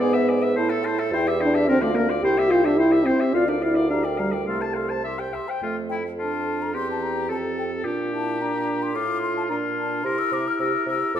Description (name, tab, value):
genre	quick classical-period movement for wind quintet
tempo	108 BPM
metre	2/4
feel	straight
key	F major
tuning	A4 = 440 Hz
part	mellow hollow concert flute	melody	0.0-11.2 s	D5 to F6	-30 LUFS	left 7 dB	none
part	clear oboe	second line	0.0-11.2 s	E4 to A5	-29 LUFS	left 4 dB	none
part	mellow French horn	accompaniment	0.0-11.2 s	G3 to A4	-24 LUFS	equal	none
part	mellow clarinet	accompaniment	0.0-11.2 s	A3 to D5	-30 LUFS	right 7 dB	none
part	dark bassoon	bass	0.0-11.2 s	C2 to C3	-28 LUFS	right 2 dB	none
room	wet recital hall reverb, RT60 1.9 s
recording	none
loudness	-20 LUFS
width	side -10 dB against mid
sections	0.0-5.6 A section; 5.6-11.2 B section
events	none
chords	0.0 E7/G#; 0.6 Am; 1.1 C/E; 1.7 Bb/D; 2.2 C; 3.3 Bb/D; 3.9 Gm7/D; 4.5 F/C; 5.1 C; 5.6 F; 6.7 C7/E; 7.3 F; 7.9 Bb; 8.9 F/A; 9.5 Bbmaj7; 10.1 C7